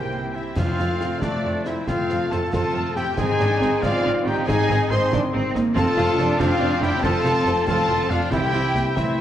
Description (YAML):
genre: cinematic, heroic adventure film score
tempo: 93 BPM (dotted quarters)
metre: 6/8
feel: straight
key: F major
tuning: A4 = 439 Hz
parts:
  - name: rich symphonic violin section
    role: melody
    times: 0.0-9.2 s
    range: C5 to C6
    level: -32 LUFS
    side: left 2 dB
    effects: none
  - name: clear oboe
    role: second line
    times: 0.0-9.2 s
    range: D4 to C5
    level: -31 LUFS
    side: right 1 dB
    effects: none
  - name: clear symphonic violin section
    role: second line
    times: 0.0-9.2 s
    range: D5 to C6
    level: -34 LUFS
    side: left 1 dB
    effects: none
  - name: hollow concert flute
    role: second line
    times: 0.0-9.2 s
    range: D5 to C6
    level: -30 LUFS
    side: left 1 dB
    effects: none
  - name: rich symphonic viola section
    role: accompaniment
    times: 0.0-9.2 s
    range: Bb3 to F4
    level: -34 LUFS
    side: right 1 dB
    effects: none
  - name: mellow trombone section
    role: sustained chords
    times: 0.0-9.2 s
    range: Eb3 to C4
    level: -33 LUFS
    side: right 2 dB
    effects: none
  - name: warm French horn section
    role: sustained chords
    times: 0.0-9.2 s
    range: D4 to C5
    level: -26 LUFS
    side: left 2 dB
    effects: none
  - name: concert harp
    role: arpeggios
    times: 0.0-9.2 s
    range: F2 to C6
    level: -31 LUFS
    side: left 5 dB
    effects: none
  - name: mellow trumpet section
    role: stabs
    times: 0.0-9.2 s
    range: A3 to G5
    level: -28 LUFS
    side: equal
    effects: none
  - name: rich studio double bass section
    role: bass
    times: 0.0-9.1 s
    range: F1 to F2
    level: -27 LUFS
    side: right 2 dB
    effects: none
  - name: warm symphonic cello section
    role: bass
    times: 0.0-9.2 s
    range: C3 to F4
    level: -28 LUFS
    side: right 1 dB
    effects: none
  - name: concert snare drum, clash cymbals and concert bass drum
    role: drums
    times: 0.6-9.2 s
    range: none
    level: -31 LUFS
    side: equal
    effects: none
  - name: timpani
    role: percussion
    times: 0.6-1.2, 8.3-8.9 s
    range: F2 to C3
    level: -29 LUFS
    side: right 1 dB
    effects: none
room: wet scoring stage reverb, RT60 1.9 s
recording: worn, warbling old tape, cassette tape, warbly pitch drift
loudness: -19 LUFS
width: side -11 dB against mid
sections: 0.6-9.2 A section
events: none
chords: 0.0 C7; 0.6 F; 3.2 Ab; 5.8 F; 8.3 C